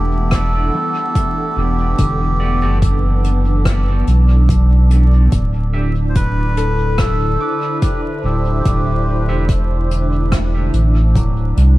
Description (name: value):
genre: ambient dub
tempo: 72 BPM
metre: 4/4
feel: straight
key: unclear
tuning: A4 = 440 Hz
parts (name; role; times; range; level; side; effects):
- melodica; melody; 0.0-9.4 s; G4 to C5; -24 LUFS; right 1 dB; dub echo
- warm analog pad; sustained chords; 0.0-11.8 s; D3 to A5; -23 LUFS; right 2 dB; chorus
- concert harp; arpeggios; 0.0-11.8 s; D3 to F#6; -28 LUFS; left 5 dB; low-pass filter, dub echo
- warm sub bass; bass; 0.0-11.8 s; D1 to C2; -14 LUFS; equal; none
- electronic kick drum; drums; 0.3-11.3 s; none; -18 LUFS; equal; none
- jazz brush drum kit; drums; 0.3-11.7 s; hi-hat, rim click; -28 LUFS; left 1 dB; dub echo
- clean electric guitar; stabs; 2.4-9.4 s; A3 to E5; -34 LUFS; right 2 dB; vintage 12-bit sampler grit, dub echo
room: light reverb, small room ambience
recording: vinyl crackle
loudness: -13 LUFS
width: side -18 dB against mid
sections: 0.0-11.8 A section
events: filter sweep on harp 0.0-11.8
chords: 0.0 Em11; 5.3 D9sus4